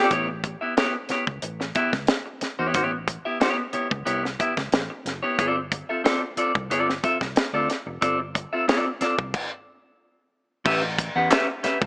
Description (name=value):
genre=funk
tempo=91 BPM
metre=4/4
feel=straight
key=A mixolydian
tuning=A4 = 439 Hz
part: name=clean electric guitar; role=accompaniment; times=0.0-11.8 s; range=B3 to F#5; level=-24 LUFS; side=equal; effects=none
part: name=vintage muted fingered electric bass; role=bass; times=0.1-11.9 s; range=F1 to E2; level=-34 LUFS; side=equal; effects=none
part: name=tight funk drum kit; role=drums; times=0.1-11.9 s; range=crash cymbal, hi-hat, kick drum, snare drum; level=-24 LUFS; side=equal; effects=none
part: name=group handclap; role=percussion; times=11.3-11.5 s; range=none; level=-27 LUFS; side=equal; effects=none
room=light reverb, studio ambience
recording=small speaker sound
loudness=-22 LUFS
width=side -32 dB against mid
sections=0.1-10.7 A section; 10.7-11.9 B section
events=stop 9.3-10.7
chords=0.1 A9; 5.4 G9sus4; 10.7 A9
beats=| 0.11 0.77 1.43 2.09 | 2.75 3.41 4.07 4.73 | 5.39 6.05 6.71 7.36 | 8.02 8.68 9.34 9.99 | 10.65 11.31